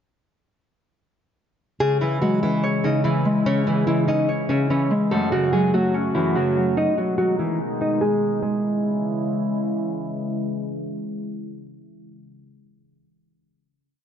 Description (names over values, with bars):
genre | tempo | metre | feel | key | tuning
hip hop, trap | 145 BPM | 4/4 | half-time | C# minor | A4 = 440 Hz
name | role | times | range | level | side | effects
nylon-string guitar | melody | 1.8-9.6 s | E3 to D#5 | -22 LUFS | right 1 dB | digital delay
Celtic harp | accompaniment | 1.8-9.1 s | F#2 to C#5 | -22 LUFS | equal | none
warbly tape-like pad | sustained chords | 2.6-12.5 s | B2 to F#4 | -27 LUFS | left 1 dB | chorus, built-in reverb
room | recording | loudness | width
light reverb, studio reverb | dark, warm production, low-pass filter, nothing above 7.5 kHz | -20 LUFS | side -8 dB against mid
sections
1.8-8.4 breakdown; 8.4-11.7 final chord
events
filter sweep 1.8-8.4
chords
1.8 C#m; 5.1 F#m; 6.8 G#m; 8.4 C#m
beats
| 1.80 2.22 2.63 3.04 | 3.46 3.87 4.29 4.70 | 5.11 5.53 5.94 6.36 | 6.77 7.18 7.60 8.01 | 8.42 8.84 9.25 9.67 | 10.08 10.49 10.91 11.32